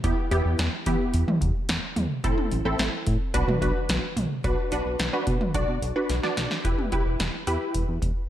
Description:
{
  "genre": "synth-pop",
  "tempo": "109 BPM",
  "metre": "4/4",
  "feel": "straight",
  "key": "E minor",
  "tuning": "A4 = 441 Hz",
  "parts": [
    { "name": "wide unison pluck", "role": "accompaniment", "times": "0.0-8.3 s", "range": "B3 to D5", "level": "-28 LUFS", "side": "equal", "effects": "ensemble chorus" },
    { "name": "chorused synth bass", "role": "bass", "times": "0.0-8.1 s", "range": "E1 to E3", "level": "-27 LUFS", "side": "equal", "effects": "none" },
    { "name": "electro analog drum machine", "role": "drums", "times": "0.0-8.2 s", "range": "hi-hat, kick drum, snare drum, toms", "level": "-27 LUFS", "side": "equal", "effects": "none" }
  ],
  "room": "moderate lush hall reverb, RT60 1.5 s",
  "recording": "dreamy mix soaked in reverb",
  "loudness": "-23 LUFS",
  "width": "side -12 dB against mid",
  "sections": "0.0-4.4 A section; 4.4-6.6 B section; 6.6-8.3 C section",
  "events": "drum fill 6.1-6.6",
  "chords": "0.0 Em; 2.2 Am; 3.3 Bm; 6.6 Em"
}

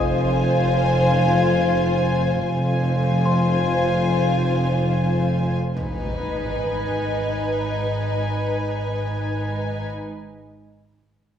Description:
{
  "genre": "cinematic",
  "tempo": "free time",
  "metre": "none",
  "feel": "none",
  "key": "unclear",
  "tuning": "A4 = 440 Hz",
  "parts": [
    { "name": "rich studio violin section", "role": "melody", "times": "0.0-9.9 s", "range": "Ab5", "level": "-29 LUFS", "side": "left 3 dB", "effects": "none" },
    { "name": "dark studio violin section", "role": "second line", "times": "0.0-9.9 s", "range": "D#4 to C5", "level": "-23 LUFS", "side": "left 2 dB", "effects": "none" },
    { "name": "rich studio double bass section", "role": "bass", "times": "0.0-9.9 s", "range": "F1 to G#1", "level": "-24 LUFS", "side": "right 1 dB", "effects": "none" },
    { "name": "warm chamber cello section", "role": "bass", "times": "0.0-9.9 s", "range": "F2 to G#2", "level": "-26 LUFS", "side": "right 1 dB", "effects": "none" },
    { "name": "sub drop and impact", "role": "sound effects", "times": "0.0-10.6 s", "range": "none", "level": "-36 LUFS", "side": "equal", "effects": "none" },
    { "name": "celesta", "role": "texture", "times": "0.0-5.8 s", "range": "D#5 to D#6", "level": "-32 LUFS", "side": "left 5 dB", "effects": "none" }
  ],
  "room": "wet recital hall reverb, RT60 1.4 s",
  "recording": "recorded in a church or concert hall",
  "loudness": "-19 LUFS",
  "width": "side -9 dB against mid",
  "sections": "0.0-5.8 A section; 5.8-9.1 B section",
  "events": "impact 0.0-2.4, 5.8-9.1",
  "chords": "0.0 Fm; 5.8 G#m"
}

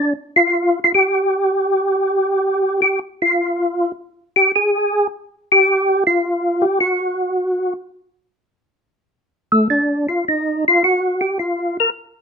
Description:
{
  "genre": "jazz",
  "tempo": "105 BPM",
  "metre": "4/4",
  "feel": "swing 69% on 8ths",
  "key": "unclear",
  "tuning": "A4 = 436 Hz",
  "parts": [
    { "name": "percussive tonewheel organ", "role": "solo", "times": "0.0-11.9 s", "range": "A3 to Bb4", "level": "-15 LUFS", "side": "equal", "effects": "slow rotary speaker, chorus vibrato" }
  ],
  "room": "moderate club reverb, RT60 0.8 s",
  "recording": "minimal, uncompressed stereo recording",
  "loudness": "-15 LUFS",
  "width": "side -6 dB against mid",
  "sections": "0.0-8.0 A section; 8.0-12.2 B section",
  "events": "tonewheel organ solo 8.0-12.2",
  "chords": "none"
}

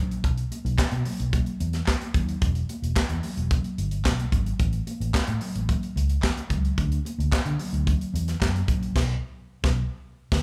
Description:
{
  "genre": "disco",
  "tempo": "110 BPM",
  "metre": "4/4",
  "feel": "straight",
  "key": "unclear",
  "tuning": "A4 = 441 Hz",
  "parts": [
    { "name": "vintage muted fingered electric bass", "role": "bass", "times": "0.0-10.4 s", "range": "E1 to D3", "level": "-29 LUFS", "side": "equal", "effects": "none" },
    { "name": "tight funk drum kit", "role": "drums", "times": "0.1-10.4 s", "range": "crash cymbal, handclaps, hi-hat, kick drum, snare drum", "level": "-28 LUFS", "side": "equal", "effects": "none" },
    { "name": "congas", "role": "percussion", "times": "0.5-8.8 s", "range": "none", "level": "-37 LUFS", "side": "equal", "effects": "none" },
    { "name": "group handclap", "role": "percussion", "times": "0.8-8.5 s", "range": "none", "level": "-41 LUFS", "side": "equal", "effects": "none" }
  ],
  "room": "moderate large studio reverb, RT60 1.3 s",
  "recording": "band playing live in one room",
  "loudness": "-26 LUFS",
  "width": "mono",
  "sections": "0.0-10.4 A section",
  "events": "band accent 9.0-10.4",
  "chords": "none"
}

